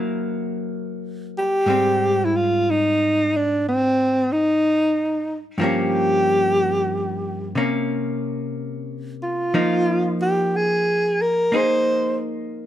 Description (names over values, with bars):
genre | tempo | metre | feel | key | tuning
jazz ballad | 61 BPM | 4/4 | swing 66% on 8ths | unclear | A4 = 440 Hz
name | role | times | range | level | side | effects
archtop guitar, miked and amplified | accompaniment | 0.0-12.7 s | G2 to Ab4 | -24 LUFS | equal | none
breathy alto saxophone | melody | 1.4-12.2 s | C4 to C5 | -19 LUFS | equal | none
room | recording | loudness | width
light reverb | close, detailed microphones | -18 LUFS | side -11 dB against mid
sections
0.0-12.7 A section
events
none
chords
0.0 Gb7; 1.7 Abmaj7; 5.6 Gm7b5; 7.5 Bbmadd9/C; 9.5 Fm7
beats
0.69 | 1.67 2.65 3.62 4.60 | 5.58 6.56 7.54 8.53 | 9.53 10.52 11.51 12.50